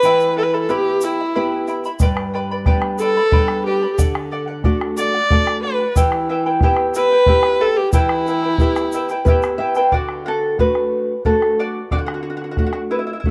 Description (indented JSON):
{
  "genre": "andean folk, Andean ensemble",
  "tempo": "91 BPM",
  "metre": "3/4",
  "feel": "straight",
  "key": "unclear",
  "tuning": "A4 = 440 Hz",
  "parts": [
    { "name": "clear viola", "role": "melody", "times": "0.0-9.5 s", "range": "E4 to D5", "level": "-20 LUFS", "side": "equal", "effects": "none" },
    { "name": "charango", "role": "accompaniment", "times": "0.0-13.3 s", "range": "E4 to B5", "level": "-24 LUFS", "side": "equal", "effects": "none" },
    { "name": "nylon-string guitar", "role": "accompaniment", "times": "0.0-13.3 s", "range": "G2 to E5", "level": "-26 LUFS", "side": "equal", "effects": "none" },
    { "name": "tube shaker", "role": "percussion", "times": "0.0-9.8 s", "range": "none", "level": "-38 LUFS", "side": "equal", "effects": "none" },
    { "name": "bombo", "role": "percussion", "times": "2.0-13.3 s", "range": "none", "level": "-20 LUFS", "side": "equal", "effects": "none" }
  ],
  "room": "light reverb, small room ambience",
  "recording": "dry, close 1970s-style studio recording",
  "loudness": "-18 LUFS",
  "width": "mono",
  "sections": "0.0-9.9 A section; 9.9-13.3 B section",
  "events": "nylon-string guitar fill 8.9-9.9; charango solo 9.9-13.3",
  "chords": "0.0 Em; 2.0 G; 4.0 D; 6.0 Em; 9.9 D"
}